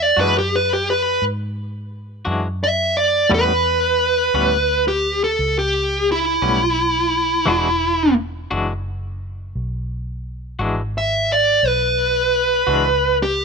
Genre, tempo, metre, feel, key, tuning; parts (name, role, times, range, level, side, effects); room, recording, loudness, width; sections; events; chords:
blues; 58 BPM (dotted quarters); 12/8; straight; E mixolydian; A4 = 440 Hz
dark smooth lead guitar; melody; 0.0-13.4 s; E4 to E5; -16 LUFS; right 1 dB; overdrive
vintage muted fingered electric bass; bass; 0.0-13.4 s; E1 to G#2; -26 LUFS; equal
semi-hollow electric guitar; accompaniment; 0.2-12.9 s; A2 to F#4; -22 LUFS; left 3 dB; tremolo
digital ambience; rough home demo mix; -16 LUFS; side -5 dB against mid
0.0-13.4 A section
lead electric guitar solo 0.0-13.4
0.0 E9; 3.3 A9; 7.5 E9